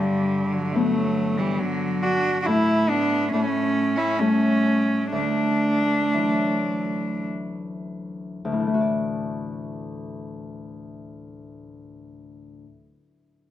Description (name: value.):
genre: celtic folk, Celtic slow air.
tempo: 44-71 BPM.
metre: 3/4.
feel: rubato.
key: D major.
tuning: A4 = 438 Hz.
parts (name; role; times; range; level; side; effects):
rich cello; melody; 0.0-7.3 s; F#3 to F#4; -23 LUFS; equal; none.
bright cello; second line; 0.0-7.3 s; D3 to D4; -27 LUFS; right 4 dB; none.
Celtic harp; accompaniment; 0.0-13.0 s; D2 to D5; -26 LUFS; left 3 dB; none.
room: moderate recital hall reverb, RT60 1.5 s.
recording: none.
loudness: -20 LUFS.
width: side -12 dB against mid.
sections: 0.0-8.6 A section; 8.6-12.6 B section.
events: slowing down 2.5-8.6.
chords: 0.0 Gmaj7; 2.5 N.C.; 3.3 A7; 5.1 Dadd9.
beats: 0.77 1.63 | 2.49 3.34 4.21 | 5.14 6.16 7.31 | 8.64 9.95 11.24.